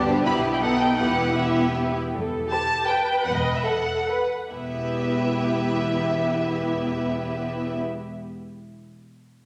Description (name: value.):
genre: quick classical-period movement for string orchestra.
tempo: 136-165 BPM.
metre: 3/4.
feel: straight.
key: E minor.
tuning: A4 = 440 Hz.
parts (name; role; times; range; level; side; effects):
clear studio violin section; second line; 0.0-7.8 s; G4 to C5; -32 LUFS; equal; none.
warm studio viola section; accompaniment; 0.0-7.8 s; B3 to B4; -28 LUFS; equal; none.
clear studio cello section; bass; 0.0-7.8 s; E2 to B2; -36 LUFS; equal; none.
rich studio double bass section; bass; 0.0-7.8 s; E1 to B1; -34 LUFS; equal; none.
clear studio violin section; melody; 0.3-7.7 s; D#5 to B5; -30 LUFS; equal; none.
room: wet scoring stage reverb, RT60 1.7 s.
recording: none.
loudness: -24 LUFS.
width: mono.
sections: 0.0-2.1 A section; 2.1-4.5 B section; 4.5-7.1 C section.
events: slowing down 1.6-4.5.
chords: 0.3 Em/B; 0.6 B7; 1.0 Em; 3.3 B5/E; 4.5 Em.